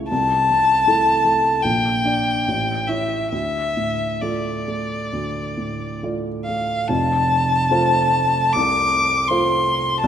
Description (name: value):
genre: classical, romantic duo for violin and grand piano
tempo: 66-84 BPM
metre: 4/4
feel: rubato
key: D minor, F major from 6.9 s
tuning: A4 = 440 Hz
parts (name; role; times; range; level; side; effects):
- warm grand piano; accompaniment; 0.0-10.1 s; F1 to D5; -23 LUFS; right 2 dB; none
- rich violin; melody; 0.1-10.1 s; D5 to D6; -18 LUFS; left 2 dB; none
room: moderate scoring stage reverb, RT60 1.7 s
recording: none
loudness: -17 LUFS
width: side -9 dB against mid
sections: 0.0-6.9 A section; 6.9-10.1 B section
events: none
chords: 0.1 Am/C; 1.6 Gm/Bb; 2.5 A7; 3.3 Dm; 6.9 F